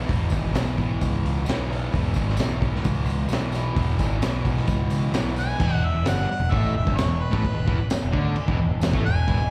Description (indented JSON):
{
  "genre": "garage rock duo or trio",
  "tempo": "130 BPM",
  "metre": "4/4",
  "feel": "straight",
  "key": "E major",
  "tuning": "A4 = 439 Hz",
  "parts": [
    { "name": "fuzz guitar", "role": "riff", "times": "0.0-9.5 s", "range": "E2 to D4", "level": "-30 LUFS", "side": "equal", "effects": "distortion, slapback echo" },
    { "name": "growling picked electric bass", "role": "bass", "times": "0.0-9.5 s", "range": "E1 to D2", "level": "-27 LUFS", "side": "equal", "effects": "overdrive" },
    { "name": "crunchy breakbeat drum kit", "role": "drums", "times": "0.1-9.4 s", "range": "crash cymbal, hi-hat, kick drum, snare drum", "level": "-28 LUFS", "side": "equal", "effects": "none" },
    { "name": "tambourine", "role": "percussion", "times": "0.1-8.9 s", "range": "none", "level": "-47 LUFS", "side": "equal", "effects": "none" },
    { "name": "clear harmonica", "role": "melody", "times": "5.4-9.5 s", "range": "B4 to G#5", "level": "-32 LUFS", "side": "equal", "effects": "overdrive, tape echo" }
  ],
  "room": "small room ambience",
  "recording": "live gig heard through the venue's PA, club reverb",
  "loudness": "-23 LUFS",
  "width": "mono",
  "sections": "0.0-5.6 A section; 5.6-9.5 B section",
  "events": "none",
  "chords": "0.0 E5; 5.6 N.C."
}